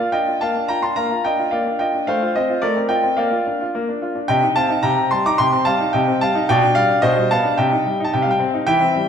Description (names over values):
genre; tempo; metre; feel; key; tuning
classical-period piano sonatina; 109 BPM; 4/4; straight; Bb major; A4 = 439 Hz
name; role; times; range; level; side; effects
clear concert grand piano; solo; 0.0-9.1 s; B2 to D6; -16 LUFS; equal; none
room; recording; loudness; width
wet recital hall reverb, RT60 1.5 s; dark, warm production; -16 LUFS; side -7 dB against mid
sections
0.0-9.1 A section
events
none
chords
0.0 Bb; 2.1 F/A; 3.2 Bb; 4.3 Cm; 6.5 G/B; 7.6 Cm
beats
0.42 0.98 1.54 | 2.09 2.64 3.19 3.74 | 4.29 4.84 5.39 5.94 | 6.49 7.04 7.58 8.12 | 8.67